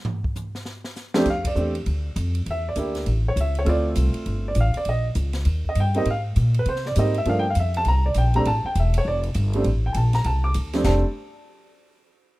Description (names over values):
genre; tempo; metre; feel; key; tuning
jazz piano trio; 200 BPM; 4/4; swing 62% on 8ths; F major; A4 = 440 Hz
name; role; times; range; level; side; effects
open jazz drum kit; drums; 0.0-10.9 s; crash cymbal, hi-hat, kick drum, ride cymbal, snare drum, toms; -33 LUFS; equal; none
warm upright piano; melody; 1.1-11.0 s; F2 to D6; -24 LUFS; right 1 dB; plate reverb
upright bass; bass; 1.3-11.0 s; E1 to C3; -21 LUFS; equal; none
room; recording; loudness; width
light reverb; rough home demo mix; -20 LUFS; side -19 dB against mid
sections
0.0-1.3 A section; 1.3-10.9 B section; 10.9-12.0 C section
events
upright piano solo 0.0-1.3; drum solo 0.0-1.3; band accent 1.4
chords
0.0 N.C.; 1.3 F5; 2.5 Em7b5; 3.1 A; 3.7 Dm7; 4.9 Bbm; 5.5 Eb; 6.1 Ab; 7.3 Gm7; 7.9 C5; 8.5 F6; 10.9 F